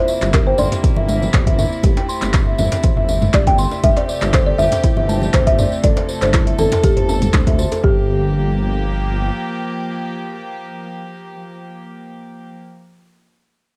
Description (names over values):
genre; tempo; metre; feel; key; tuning
afro house; 120 BPM; 4/4; straight; G dorian; A4 = 440 Hz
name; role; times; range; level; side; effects
folk marimba with medium mallets; melody; 0.0-12.7 s; G4 to G5; -22 LUFS; equal; cassette tape, tape echo
rich chamber string section; sustained chords; 0.0-12.6 s; C3 to A4; -29 LUFS; equal; sidechain pumping, cassette tape
kalimba; arpeggios; 0.0-8.1 s; E4 to C6; -27 LUFS; equal; sidechain pumping, cassette tape, tape echo
tambourine; percussion; 0.1-7.8 s; none; -36 LUFS; equal; none
dark detuned saw bass; bass; 0.2-9.3 s; G1 to D2; -22 LUFS; equal; sidechain pumping
deep house drum kit; drums; 0.2-7.8 s; handclaps, hi-hat, toms; -25 LUFS; equal; studio ambience, cassette tape
congas; percussion; 0.2-7.4 s; none; -29 LUFS; equal; none
electronic kick drum; drums; 0.3-7.9 s; none; -18 LUFS; equal; studio ambience, cassette tape
djembe; percussion; 0.3-7.8 s; none; -31 LUFS; equal; none
room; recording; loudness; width
studio ambience; home recording on cassette; -16 LUFS; mono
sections
0.0-7.8 A section; 7.8-11.8 B section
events
drop 0.0-7.8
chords
0.0 C7/G; 3.8 Am7/G; 7.8 Gm7